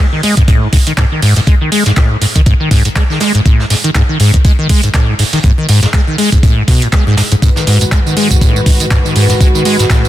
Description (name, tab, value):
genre	acid house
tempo	121 BPM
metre	4/4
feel	swing 57% on 16ths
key	G# phrygian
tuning	A4 = 441 Hz
part	acid bass, saw	riff	0.0-10.1 s	G#2 to G#3	-12 LUFS	equal	wide subtle chorus, sidechain pumping, ping-pong delay
part	electro analog drum machine	drums	0.2-10.1 s	handclaps, hi-hat, tambourine	-18 LUFS	right 2 dB	soft clipping on snare
part	vintage brush drum kit	drums	0.2-10.0 s	hi-hat, snare drum	-25 LUFS	right 2 dB	none
part	electronic kick drum	drums	0.4-10.0 s	none	-10 LUFS	equal	none
part	dark studio string section	sustained chords	7.4-10.1 s	G#2 to B4	-16 LUFS	equal	sidechain pumping
room	small room ambience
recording	dense, heavily limited modern master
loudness	-8 LUFS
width	side -13 dB against mid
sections	0.0-10.1 A section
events	none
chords	0.0 G#m7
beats	0.48 0.98 | 1.47 1.97 2.46 2.96 | 3.46 3.95 4.45 4.94 | 5.44 5.93 6.43 6.93 | 7.42 7.92 8.41 8.91 | 9.41 9.90